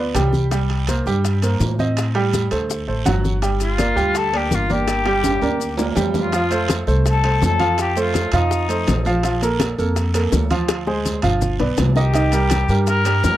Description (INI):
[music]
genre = latin, salsa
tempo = 165 BPM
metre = 4/4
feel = straight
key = G minor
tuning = A4 = 441 Hz
[part]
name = mellow cor anglais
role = melody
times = 0.0-0.3, 3.6-9.1, 12.0-13.4 s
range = Eb4 to Bb4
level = -22 LUFS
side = left 4 dB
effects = slapback echo
[part]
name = clear concert grand piano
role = accompaniment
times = 0.0-13.4 s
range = Eb3 to G5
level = -21 LUFS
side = right 3 dB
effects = none
[part]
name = upright bass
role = bass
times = 0.0-13.4 s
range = G1 to A2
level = -20 LUFS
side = equal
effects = none
[part]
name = timbales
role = percussion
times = 0.1-13.4 s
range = none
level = -29 LUFS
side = right 4 dB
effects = none
[part]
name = bongos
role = percussion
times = 0.2-13.4 s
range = none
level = -26 LUFS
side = left 7 dB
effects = none
[part]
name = congas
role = percussion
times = 0.2-13.4 s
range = none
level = -25 LUFS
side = left 1 dB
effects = none
[part]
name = guiro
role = percussion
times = 0.2-13.4 s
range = none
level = -36 LUFS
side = right 8 dB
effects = none
[part]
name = maracas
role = percussion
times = 0.2-13.4 s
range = none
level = -33 LUFS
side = left 10 dB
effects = none
[sound]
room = little or no reverb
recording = dry, close 1970s-style studio recording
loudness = -16 LUFS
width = side -13 dB against mid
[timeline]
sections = 0.0-6.3 A section; 6.3-13.4 B section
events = drum fill 4.9-6.3, 10.7-12.1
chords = 0.0 G7; 0.5 C7(no3); 2.0 Am7b5; 2.7 D7; 3.4 Gm7; 6.3 F; 7.8 F7; 9.2 Bbmaj7; 10.7 Dm7b5; 11.4 G7; 12.1 Cm7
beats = 0.16 | 0.52 0.88 1.25 1.61 | 1.97 2.34 2.70 3.06 | 3.43 3.79 4.15 4.52 | 4.88 5.24 5.61 5.97 | 6.33 6.70 7.06 7.42 | 7.79 8.15 8.51 8.88 | 9.24 9.60 9.97 10.33 | 10.69 11.06 11.42 11.78 | 12.15 12.51 12.87 13.24